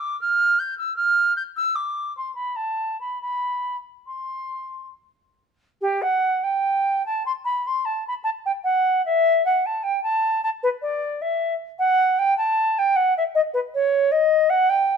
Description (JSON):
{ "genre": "classical, baroque-style fantasia for unaccompanied flute", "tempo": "67-79 BPM", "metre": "3/4", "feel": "rubato", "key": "C major, G major from 5.8 s", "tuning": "A4 = 441 Hz", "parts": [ { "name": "silver concert flute", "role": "solo", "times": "0.0-15.0 s", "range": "G4 to G6", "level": "-20 LUFS", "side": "equal", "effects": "none" } ], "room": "moderate stone room reverb, RT60 1.1 s", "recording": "none", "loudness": "-20 LUFS", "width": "side -6 dB against mid", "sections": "0.0-5.8 A section; 5.8-15.0 A section", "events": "none", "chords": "none", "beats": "0.00 | 0.78 1.56 2.35 | 3.21 4.07 4.94 | 5.81 6.64 7.46 | 8.26 9.06 9.86 | 10.64 11.43 12.20 | 12.97 13.74 14.50" }